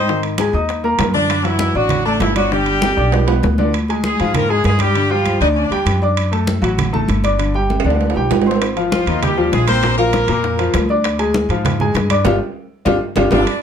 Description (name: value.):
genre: latin, salsa.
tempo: 197 BPM.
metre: 4/4.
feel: straight.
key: unclear.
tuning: A4 = 440 Hz.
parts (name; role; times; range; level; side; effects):
clear horn section; melody; 0.0-6.0, 8.9-10.9, 13.3-13.6 s; E3 to Eb5; -19 LUFS; equal; none.
clear concert grand piano; accompaniment; 0.0-13.4 s; Bb2 to Eb6; -18 LUFS; left 2 dB; none.
upright bass; bass; 0.0-13.4 s; G1 to Ab2; -19 LUFS; equal; none.
bongos; percussion; 0.1-3.6, 8.6-13.4 s; none; -25 LUFS; left 7 dB; none.
congas; percussion; 0.1-13.6 s; none; -23 LUFS; equal; none.
timbales; percussion; 0.2-13.6 s; none; -23 LUFS; right 8 dB; none.
room: light reverb.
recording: none.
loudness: -14 LUFS.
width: side -8 dB against mid.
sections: 0.0-3.7 A section; 3.7-13.5 B section.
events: drum fill 2.8-3.7, 7.7-8.6, 12.3-13.5; band accent 12.3-13.5.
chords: 0.1 Abadd9; 1.3 D; 2.5 G; 3.7 Ddim; 5.0 G5; 6.2 D; 7.4 G5; 8.6 Ab6; 9.8 Bb; 11.0 Ddim; 12.3 G5.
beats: | 0.08 0.39 0.69 1.00 | 1.30 1.60 1.91 2.21 | 2.52 2.82 3.13 3.43 | 3.74 4.04 4.34 4.65 | 4.95 5.26 5.56 5.87 | 6.17 6.48 6.78 7.09 | 7.39 7.70 8.00 8.30 | 8.61 8.91 9.22 9.52 | 9.82 10.13 10.43 10.74 | 11.04 11.35 11.65 11.95 | 12.26 12.56 12.86 13.17 | 13.47.